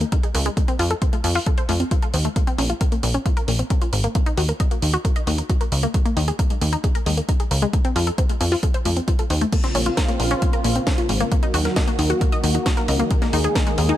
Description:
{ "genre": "uplifting trance", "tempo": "134 BPM", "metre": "4/4", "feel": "straight", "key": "unclear", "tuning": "A4 = 439 Hz", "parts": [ { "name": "wide unison pluck", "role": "arpeggios", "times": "0.0-13.9 s", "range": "Ab3 to Eb5", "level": "-25 LUFS", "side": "left 2 dB", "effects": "sidechain pumping, ping-pong delay" }, { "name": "plucky analog bass", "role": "bass", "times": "0.0-13.9 s", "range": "Ab1 to F2", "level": "-21 LUFS", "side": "equal", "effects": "sidechain pumping" }, { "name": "techno drum kit", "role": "drums", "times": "0.0-14.0 s", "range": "crash cymbal, hi-hat, snare drum", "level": "-28 LUFS", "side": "right 1 dB", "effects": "none" }, { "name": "electronic kick drum", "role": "drums", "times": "0.1-13.6 s", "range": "none", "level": "-21 LUFS", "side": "equal", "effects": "none" }, { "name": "filtered supersaw swell", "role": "sustained chords", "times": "9.5-14.0 s", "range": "Db3 to Ab4", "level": "-25 LUFS", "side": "right 1 dB", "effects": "sidechain pumping" } ], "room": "little or no reverb", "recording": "none", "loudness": "-18 LUFS", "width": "side -13 dB against mid", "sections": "0.0-14.0 A section", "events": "none", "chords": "0.0 Absus2; 0.6 F; 2.4 N.C.; 4.2 Eb5; 5.9 Absus2/Eb; 7.7 F; 9.5 Bbmadd9; 11.3 Ebm; 13.1 Absus2/Eb", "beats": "0.12 | 0.57 1.02 1.47 1.91 | 2.36 2.81 3.26 3.71 | 4.15 4.60 5.05 5.50 | 5.94 6.39 6.84 7.29 | 7.74 8.18 8.63 9.08 | 9.53 9.97 10.42 10.87 | 11.32 11.76 12.21 12.66 | 13.11 13.56" }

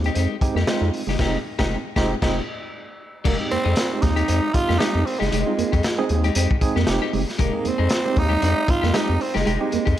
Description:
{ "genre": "funk", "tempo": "116 BPM", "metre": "4/4", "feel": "swing 56% on 16ths", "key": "F minor", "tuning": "A4 = 440 Hz", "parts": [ { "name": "tine electric piano", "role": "stabs", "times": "0.0-9.9 s", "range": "Ab3 to Ab4", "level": "-27 LUFS", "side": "right 4 dB", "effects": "medium tremolo" }, { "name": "round analog bass", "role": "bass", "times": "0.0-10.0 s", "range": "F1 to F2", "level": "-22 LUFS", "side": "equal", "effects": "none" }, { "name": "crunchy breakbeat drum kit", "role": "drums", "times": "0.0-10.0 s", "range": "crash cymbal, hi-hat, kick drum, snare drum", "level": "-24 LUFS", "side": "equal", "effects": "none" }, { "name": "clean electric guitar", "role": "accompaniment", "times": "0.1-10.0 s", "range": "Ab3 to Ab4", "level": "-28 LUFS", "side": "left 8 dB", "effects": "spring reverb" }, { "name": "mellow electric guitar", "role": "riff", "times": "0.1-9.9 s", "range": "Ab3 to C4", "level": "-29 LUFS", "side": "right 8 dB", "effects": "spring reverb" }, { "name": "growling tenor saxophone", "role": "melody", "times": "3.3-10.0 s", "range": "Ab3 to F4", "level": "-24 LUFS", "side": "right 2 dB", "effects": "tape echo" } ], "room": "studio reverb", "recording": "none", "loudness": "-19 LUFS", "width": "side -12 dB against mid", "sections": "0.0-3.3 A section; 3.3-10.0 B section", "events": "band accent 1.2-3.3; tine electric piano fill 2.2-3.3", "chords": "0.0 Fm9", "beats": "0.16 0.67 | 1.19 1.71 2.22 2.74 | 3.26 3.77 4.29 4.81 | 5.32 5.84 6.36 6.87 | 7.39 7.91 8.43 8.94 | 9.46 9.98" }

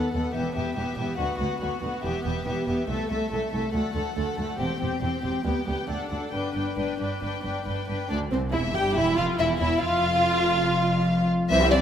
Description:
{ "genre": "quick classical-period movement for string orchestra", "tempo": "141 BPM", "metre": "4/4", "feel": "rubato", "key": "G major, C major from 8.1 s", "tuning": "A4 = 438 Hz", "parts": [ { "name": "dark chamber violin section", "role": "melody", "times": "0.0-11.8 s", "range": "C5 to G5", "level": "-29 LUFS", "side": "left 2 dB", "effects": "none" }, { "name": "warm symphonic violin section", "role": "second line", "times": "0.0-11.8 s", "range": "C4 to E5", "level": "-31 LUFS", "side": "left 2 dB", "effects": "none" }, { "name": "dark symphonic viola section", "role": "accompaniment", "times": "0.0-11.8 s", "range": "E3 to G4", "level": "-29 LUFS", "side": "right 1 dB", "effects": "none" }, { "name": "dark symphonic double bass section", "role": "bass", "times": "0.1-11.8 s", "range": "E1 to D#2", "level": "-32 LUFS", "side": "right 2 dB", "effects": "none" }, { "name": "warm chamber cello section", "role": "bass", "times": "0.1-11.8 s", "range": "C2 to G2", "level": "-30 LUFS", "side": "right 1 dB", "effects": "none" } ], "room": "wet scoring stage reverb, RT60 1.6 s", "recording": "none", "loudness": "-23 LUFS", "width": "side -9 dB against mid", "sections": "0.0-8.1 A section; 8.1-11.8 B section", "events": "none", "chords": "0.4 Em; 1.2 Bm/D; 2.0 Em; 2.9 Am/C; 3.7 D; 4.6 C/E; 5.5 G/D; 5.9 D; 6.3 G; 8.1 C; 9.8 N.C.", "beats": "0.36 0.78 | 1.20 1.62 2.04 2.46 | 2.89 3.31 3.74 4.17 | 4.60 5.02 5.46 5.89 | 6.33 6.78 7.22 7.67 | 8.11 8.54 8.97 9.40 | 9.82 10.25 10.67 11.10 | 11.51" }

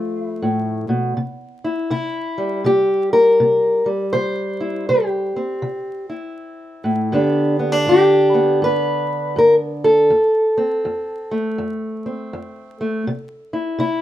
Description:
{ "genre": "acoustic country blues, solo or duo", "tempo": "81 BPM", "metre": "4/4", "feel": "swing 63% on 8ths", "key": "C major", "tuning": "A4 = 438 Hz", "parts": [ { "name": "fingerpicked steel-string acoustic guitar", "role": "solo", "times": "0.0-14.0 s", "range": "F2 to C5", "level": "-16 LUFS", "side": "equal", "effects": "none" } ], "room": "moderate studio reverb, RT60 0.7 s", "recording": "rough home demo mix, vinyl crackle", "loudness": "-16 LUFS", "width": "side -12 dB against mid", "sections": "0.0-14.0 A section", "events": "none", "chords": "0.0 F; 1.2 C; 7.1 G; 10.1 F; 13.1 C", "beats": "0.43 | 1.18 1.92 2.66 3.40 | 4.15 4.89 5.63 6.38 | 7.12 7.86 8.61 9.35 | 10.09 10.83 11.57 12.31 | 13.06 13.80" }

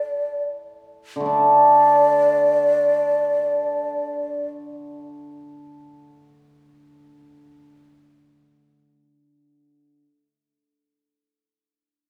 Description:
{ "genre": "chinese traditional, Chinese chamber ensemble", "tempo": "free time", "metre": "none", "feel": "none", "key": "unclear", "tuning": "A4 = 438 Hz", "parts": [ { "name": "hollow xiao", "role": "melody", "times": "0.0-4.5 s", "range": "D5", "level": "-22 LUFS", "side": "equal", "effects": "none" }, { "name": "hammered dulcimer", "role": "accompaniment", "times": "1.2-10.0 s", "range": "D3 to D4", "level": "-22 LUFS", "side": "equal", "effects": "none" } ], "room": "wet recital hall reverb, RT60 1.5 s", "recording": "heard from further back in the room", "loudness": "-19 LUFS", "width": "mono", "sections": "0.0-1.3 A section; 1.3-4.6 B section", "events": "slowing down 0.0-1.3", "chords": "none", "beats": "free time" }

